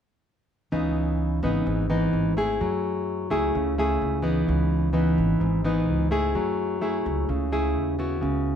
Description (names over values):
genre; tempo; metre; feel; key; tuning
bossa nova; 128 BPM; 4/4; straight; C# minor; A4 = 440 Hz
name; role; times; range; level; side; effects
nylon-string guitar; accompaniment; 0.7-8.6 s; G#2 to G#4; -23 LUFS; equal; none
upright bass; bass; 0.7-8.6 s; G#1 to F#2; -28 LUFS; right 1 dB; none
room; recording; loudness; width
moderate studio reverb, RT60 0.7 s; heard from further back in the room; -22 LUFS; side -8 dB against mid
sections
0.7-8.2 A section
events
none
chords
0.7 C#m9; 2.6 F#m9; 4.5 C#m9; 6.4 F#m9